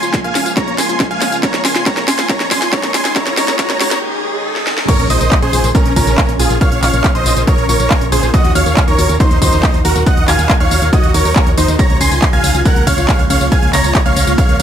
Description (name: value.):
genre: uplifting trance.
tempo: 139 BPM.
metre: 4/4.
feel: straight.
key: Bb minor.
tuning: A4 = 440 Hz.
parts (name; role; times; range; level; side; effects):
big supersaw lead; melody; 0.0-14.6 s; Db4 to C6; -17 LUFS; right 1 dB; sidechain pumping, low-pass filter, tape echo.
shimmering ambient pad; sustained chords; 0.0-14.6 s; Bb2 to Ab4; -24 LUFS; equal; chorus, built-in reverb, vintage 12-bit sampler grit, sidechain pumping.
wide unison pluck; arpeggios; 0.0-14.6 s; Ab3 to Bb4; -24 LUFS; left 2 dB; sidechain pumping, digital delay.
solid FM bass; bass; 0.0-14.6 s; Ab1 to Eb2; -17 LUFS; equal; tube saturation, sidechain pumping, high-pass filter.
techno drum kit; drums; 0.0-14.6 s; crash cymbal, handclaps, hi-hat, ride cymbal, snare drum, tambourine; -18 LUFS; equal; sidechain pumping on hats, sidechain pumping on perc, sidechain pumping on cymbals.
riser and impact; sound effects; 0.5-6.6 s; none; -25 LUFS; equal; none.
electronic kick drum; drums; 0.1-14.5 s; none; -14 LUFS; equal; none.
bright baby grand piano; second line; 4.9-14.6 s; Ab5 to C7; -23 LUFS; right 3 dB; sidechain pumping, digital delay.
room: digital ambience.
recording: high-pass filter.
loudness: -10 LUFS.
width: side -9 dB against mid.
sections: 0.0-4.9 A section; 4.9-14.6 B section.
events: build-up 0.0-4.9; drum fill 0.0-4.0, 4.6-4.9; riser 0.5-4.9; break 4.0-4.9; drop 4.9-14.6; impact 4.9-6.6.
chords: 0.0 Db6; 1.4 Absus4; 4.9 Bbm; 8.3 Ebm; 11.8 Db6.